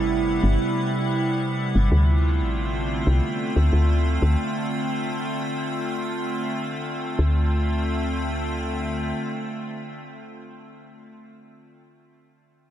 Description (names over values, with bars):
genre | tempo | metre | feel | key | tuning
IDM | 91 BPM | 4/4 | straight | D dorian | A4 = 440 Hz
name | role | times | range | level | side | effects
warbly lo-fi synth keys | melody | 0.0-1.2 s | E4 | -31 LUFS | right 9 dB | chorus, vintage 12-bit sampler grit, dub echo
icy glass pad | sustained chords | 0.0-10.6 s | C3 to F4 | -26 LUFS | equal | chorus, built-in reverb
woody FM bass | bass | 0.0-9.1 s | G1 to D2 | -21 LUFS | equal | none
room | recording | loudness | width
light reverb, digital ambience | none | -21 LUFS | side -11 dB against mid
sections
0.0-1.9 A section; 1.9-7.2 B section; 7.2-9.8 C section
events
none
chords
0.0 Cmaj7; 1.9 Dm7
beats
0.59 1.25 | 1.91 2.57 3.23 3.89 | 4.55 5.21 5.87 6.53 | 7.19 7.85 8.51 9.17